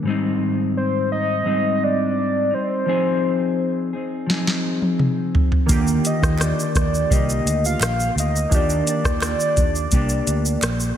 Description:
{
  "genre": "indie pop, bedroom pop",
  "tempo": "85 BPM",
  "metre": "4/4",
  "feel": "straight",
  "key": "unclear",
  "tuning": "A4 = 440 Hz",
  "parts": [
    { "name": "mellow electric guitar", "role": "accompaniment", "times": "0.0-11.0 s", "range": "Ab2 to Ab4", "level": "-23 LUFS", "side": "left 2 dB", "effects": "wide subtle chorus, warbly pitch drift" },
    { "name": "soft octave-layered synth lead", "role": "melody", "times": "0.8-11.0 s", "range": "C5 to F5", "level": "-23 LUFS", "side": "equal", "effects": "analog chorus, slapback echo, ping-pong delay" },
    { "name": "soft vintage rhythm box", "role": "drums", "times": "4.3-11.0 s", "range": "hi-hat, kick drum, rim click, shaker, snare drum, toms", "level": "-21 LUFS", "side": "equal", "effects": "overdrive" },
    { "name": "chorused retro synth keys", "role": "accompaniment", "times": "5.7-11.0 s", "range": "D3 to G4", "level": "-30 LUFS", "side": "right 7 dB", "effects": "cassette tape, slapback echo" },
    { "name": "vintage muted picked electric bass", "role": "bass", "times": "5.7-10.9 s", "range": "Bb1 to Eb2", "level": "-23 LUFS", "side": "right 1 dB", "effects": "none" },
    { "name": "group handclap", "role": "percussion", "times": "6.4-10.8 s", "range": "none", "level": "-36 LUFS", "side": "right 6 dB", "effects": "none" }
  ],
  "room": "moderate scoring stage reverb, RT60 2.1 s",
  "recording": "big arena sound",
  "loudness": "-18 LUFS",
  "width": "side -9 dB against mid",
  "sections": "0.0-11.0 A section",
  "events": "drum fill 4.3-5.7",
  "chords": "0.0 Abmaj7; 2.9 Fm7; 5.7 Ebmaj7",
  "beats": "| 0.05 0.76 1.46 2.17 | 2.87 3.58 4.28 4.99 | 5.70 6.40 7.11 7.81 | 8.52 9.22 9.92 10.63"
}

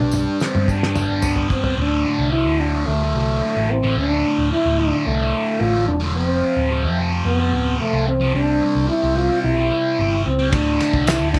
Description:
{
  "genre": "psychedelic rock",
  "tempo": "110 BPM",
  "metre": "4/4",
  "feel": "straight",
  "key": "D dorian",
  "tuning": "A4 = 441 Hz",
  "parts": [
    { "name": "mellow French horn", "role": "melody", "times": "0.0-11.4 s", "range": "A3 to F4", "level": "-23 LUFS", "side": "equal", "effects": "slapback echo" },
    { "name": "thick fuzz guitar", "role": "riff", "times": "0.0-11.4 s", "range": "D2 to D4", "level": "-26 LUFS", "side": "equal", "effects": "distortion, phaser" },
    { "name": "hollow-body short-scale picked electric bass", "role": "bass", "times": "0.0-11.4 s", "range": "D1 to G2", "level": "-24 LUFS", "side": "equal", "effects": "none" },
    { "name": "cloth-damped thuddy drum kit", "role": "drums", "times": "0.0-1.8, 10.5-11.4 s", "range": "kick drum, ride cymbal, snare drum, toms", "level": "-24 LUFS", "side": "equal", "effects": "none" },
    { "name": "tambourine", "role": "percussion", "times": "0.1-1.6, 11.1-11.2 s", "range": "none", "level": "-39 LUFS", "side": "equal", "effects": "none" }
  ],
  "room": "small room ambience",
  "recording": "none",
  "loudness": "-19 LUFS",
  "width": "mono",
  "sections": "0.0-1.8 A section; 1.8-11.4 B section",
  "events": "drum fill 0.0-1.8",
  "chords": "0.0 G; 1.8 D5; 6.2 F5; 8.4 C; 10.5 D5",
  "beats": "0.14 0.69 1.24 | 1.78 2.33 2.88 3.43 | 3.98 4.52 5.07 5.62 | 6.16 6.71 7.26 7.80 | 8.35 8.90 9.44 9.99 | 10.54 11.08"
}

